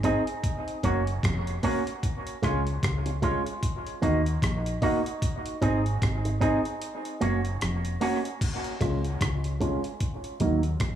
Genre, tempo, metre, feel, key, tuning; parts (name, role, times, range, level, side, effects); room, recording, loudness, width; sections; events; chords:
dub reggae; 75 BPM; 4/4; swing 58% on 16ths; Db major; A4 = 441 Hz
electric guitar with an envelope filter; accompaniment; 0.0-10.7 s; Gb3 to Ab4; -30 LUFS; right 4 dB; low-pass filter, dub echo
dark baby grand piano; stabs; 0.0-10.6 s; Db4 to Eb5; -33 LUFS; left 3 dB; low-pass filter, dub echo
deep dub fingered electric bass; bass; 0.0-11.0 s; F1 to Eb2; -28 LUFS; equal
breakbeat sampler-style drum kit; drums; 0.0-11.0 s; crash cymbal, hi-hat, kick drum, rim click; -30 LUFS; equal
light reverb; echo-heavy mix, small room ambience; -25 LUFS; side -10 dB against mid
0.0-8.4 A section; 8.4-11.0 B section
break 6.8-8.4; filter sweep 8.4-11.0
0.4 Gb; 2.0 Db; 3.6 Ebm; 5.2 Ab; 6.8 Gb; 8.4 Db; 10.0 Ebm